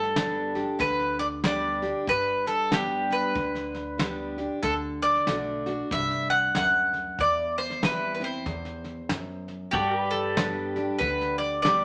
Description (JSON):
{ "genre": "honky-tonk and classic country", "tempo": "94 BPM", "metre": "4/4", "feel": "swing 60% on 8ths", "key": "G major", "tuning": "A4 = 440 Hz", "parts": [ { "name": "mandolin", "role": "melody", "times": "0.0-11.8 s", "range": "G4 to F#5", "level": "-28 LUFS", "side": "equal", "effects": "none" }, { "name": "picked steel-string acoustic guitar", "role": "accompaniment", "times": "0.0-11.8 s", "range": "E2 to G4", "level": "-35 LUFS", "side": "equal", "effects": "none" }, { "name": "upright bass", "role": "bass", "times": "0.0-11.8 s", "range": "G1 to G2", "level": "-44 LUFS", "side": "equal", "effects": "none" }, { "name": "soft brush drum kit", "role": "drums", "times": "0.0-11.8 s", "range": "hi-hat, kick drum, snare drum", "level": "-34 LUFS", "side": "equal", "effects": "none" }, { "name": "pedal steel guitar", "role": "sustained chords", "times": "9.7-11.8 s", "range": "G4 to D5", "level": "-34 LUFS", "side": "equal", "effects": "none" } ], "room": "wet studio reverb, RT60 0.7 s", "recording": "none", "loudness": "-27 LUFS", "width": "mono", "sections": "0.0-11.8 A section", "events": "none", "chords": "0.0 G; 4.6 D; 7.2 C/E; 9.7 G" }